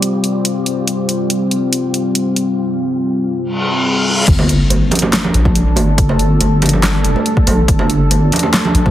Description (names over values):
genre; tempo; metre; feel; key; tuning
deep dubstep; 141 BPM; 4/4; half-time; G minor; A4 = 440 Hz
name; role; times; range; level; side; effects
deep dark ambient pad; sustained chords; 0.0-8.9 s; G3 to A4; -18 LUFS; left 1 dB; chorus, built-in reverb
deep house drum kit; drums; 0.0-8.8 s; crash cymbal, handclaps, hi-hat, snare drum; -18 LUFS; equal; overdrive
wind-like tuned noise texture; texture; 0.0-2.6 s; G4; -32 LUFS; right 1 dB; built-in reverb
reverse cymbal and sub drop; sound effects; 3.5-6.0 s; none; -18 LUFS; left 1 dB; none
deep soft wobble bass; bass; 4.3-8.9 s; F1 to Bb1; -13 LUFS; equal; chorus
electronic kick drum; drums; 4.3-8.9 s; none; -15 LUFS; equal; overdrive
congas; percussion; 4.4-8.9 s; none; -18 LUFS; right 2 dB; dub echo
room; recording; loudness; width
moderate spring reverb, RT60 1.9 s; heavily compressed radio sound, multiband compression; -12 LUFS; side -12 dB against mid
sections
0.0-4.3 A section; 4.3-8.9 B section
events
reverse cymbal 3.5-4.3; drop 4.3-8.9; impact 4.3-6.0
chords
0.0 G5; 4.3 Gm